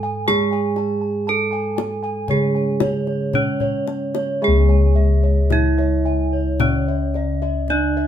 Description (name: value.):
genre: Javanese gamelan.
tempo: 55-61 BPM.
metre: 4/4.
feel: straight.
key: C# pelog.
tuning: A4 = 441 Hz.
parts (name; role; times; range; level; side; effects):
gamelan-type bronze metallophone; melody; 0.0-8.1 s; C#4 to A4-20c; -22 LUFS; right 4 dB; none.
gamelan-type bronze metallophone; accompaniment; 0.0-8.1 s; C#3 to G#3-30c; -27 LUFS; right 1 dB; none.
gamelan-type bossed gongs; arpeggios; 0.0-8.1 s; C#5 to A5-20c; -28 LUFS; left 2 dB; none.
gamelan-type bronze metallophone; arpeggios; 0.0-8.1 s; C#5 to A5-20c; -30 LUFS; right 3 dB; none.
gamelan-type bossed gongs; bass; 0.0-8.1 s; C#2 to G#4-30c; -20 LUFS; left 2 dB; none.
kendang; percussion; 0.3-7.9 s; none; -25 LUFS; left 5 dB; none.
room: wet studio reverb, RT60 0.6 s.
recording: band playing live in one room.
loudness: -17 LUFS.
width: side -9 dB against mid.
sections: 0.0-4.4 A section; 4.4-8.1 B section.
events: drum fill 3.6-4.4.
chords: none.